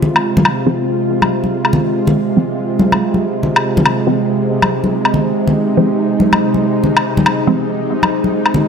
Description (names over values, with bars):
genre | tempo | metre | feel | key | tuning
deep dubstep | 141 BPM | 4/4 | swing 62% on 16ths, half-time | F minor | A4 = 439 Hz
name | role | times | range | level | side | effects
bowed-like drone | sustained chords | 0.0-8.7 s | C3 to F4 | -15 LUFS | right 1 dB | built-in reverb
congas | percussion | 0.0-8.6 s | none | -17 LUFS | left 1 dB | none
downlifter | sound effects | 0.0-0.7 s | none | barely audible | none | none
woodblock | drums | 0.2-8.5 s | none | -16 LUFS | left 2 dB | overdrive, low-pass filter on hats, studio reverb, low-pass filter on perc, low-pass filter on snare
filtered dub chord stab | stabs | 0.7-7.6 s | F3 to C4 | -18 LUFS | right 1 dB | phaser, dub echo
room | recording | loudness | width
moderate lush hall reverb, RT60 2.0 s | none | -12 LUFS | side -6 dB against mid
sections
0.0-8.7 A section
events
filter sweep on synth stab 0.0-8.7; filter sweep on synth drone 0.0-8.7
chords
0.0 Fm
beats
0.24 | 0.67 1.09 1.52 1.94 | 2.37 2.79 3.22 3.65 | 4.07 4.50 4.92 5.35 | 5.77 6.20 6.62 7.05 | 7.47 7.90 8.32